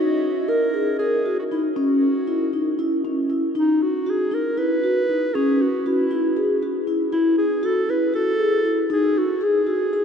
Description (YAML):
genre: contemporary instrumental, contemporary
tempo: 235 BPM (eighths)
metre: 7/8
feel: straight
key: F# mixolydian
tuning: A4 = 440 Hz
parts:
  - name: dark clarinet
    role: melody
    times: 0.0-10.0 s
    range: D#4 to B4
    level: -24 LUFS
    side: right 1 dB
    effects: none
  - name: vibraphone with soft mallets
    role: arpeggios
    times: 0.0-10.0 s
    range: C#4 to A#4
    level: -20 LUFS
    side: left 1 dB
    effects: none
room: wet huge ambient reverb, RT60 8.4 s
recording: in a vast, echoing space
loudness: -18 LUFS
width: side -7 dB against mid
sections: 0.0-3.6 A section; 3.6-10.0 B section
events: none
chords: 0.0 D#m; 1.8 F#5; 3.6 B; 5.3 F#5; 7.1 A5; 8.9 G#5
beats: 0.23 0.48 0.74 0.99 1.25 1.51 | 1.76 2.02 2.27 2.53 2.79 3.04 3.29 | 3.55 3.81 4.06 4.32 4.57 4.83 5.08 | 5.34 5.59 5.85 6.10 6.36 6.61 6.87 | 7.12 7.38 7.63 7.88 8.14 8.39 8.65 | 8.90 9.16 9.41 9.67 9.92